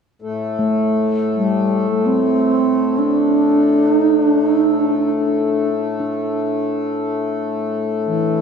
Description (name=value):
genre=world meditative, free-time meditation music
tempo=free time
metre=none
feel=none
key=A minor pentatonic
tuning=A4 = 438 Hz
part: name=pedal harmonium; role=drone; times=0.2-8.4 s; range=A2 to A3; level=-20 LUFS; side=left 5 dB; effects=none
part: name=bronze singing bowl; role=texture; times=0.6-8.4 s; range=A3 to D4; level=-25 LUFS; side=right 2 dB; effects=none
part: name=reedy bass flute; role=melody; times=1.4-8.4 s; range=E3 to D4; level=-16 LUFS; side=right 2 dB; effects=ping-pong delay
room=wet church reverb, RT60 3.1 s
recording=dark, warm production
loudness=-15 LUFS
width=side -6 dB against mid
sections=0.2-8.4 A section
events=none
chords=none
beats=free time